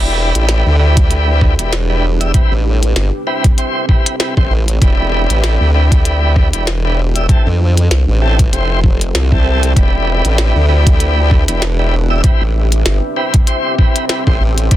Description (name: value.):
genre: glitch hop.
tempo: 97 BPM.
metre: 4/4.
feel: swing 56% on 16ths.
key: E phrygian.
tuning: A4 = 440 Hz.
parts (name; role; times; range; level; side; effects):
tonewheel organ; stabs; 0.0-14.8 s; C4 to E5; -19 LUFS; left 1 dB; fast rotary speaker, sidechain pumping, tape echo.
formant-sweep wobble bass; bass; 0.0-14.8 s; E1 to F2; -13 LUFS; equal; chorus, tube saturation.
deep dark ambient pad; texture; 0.1-14.8 s; C4 to E5; -24 LUFS; right 1 dB; chorus, built-in reverb, sidechain pumping.
glitchy drum kit; drums; 0.4-14.8 s; hi-hat, rim click, snare drum; -18 LUFS; left 1 dB; soft clipping on snare.
electronic kick drum; drums; 1.0-14.8 s; none; -11 LUFS; equal; overdrive.
room: little or no reverb.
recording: dense, heavily limited modern master.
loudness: -11 LUFS.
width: side -14 dB against mid.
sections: 0.0-14.8 A section.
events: none.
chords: 0.0 Em7; 2.3 Am7; 4.8 Em7; 7.3 Fmaj7; 9.8 Em7; 12.2 Am7.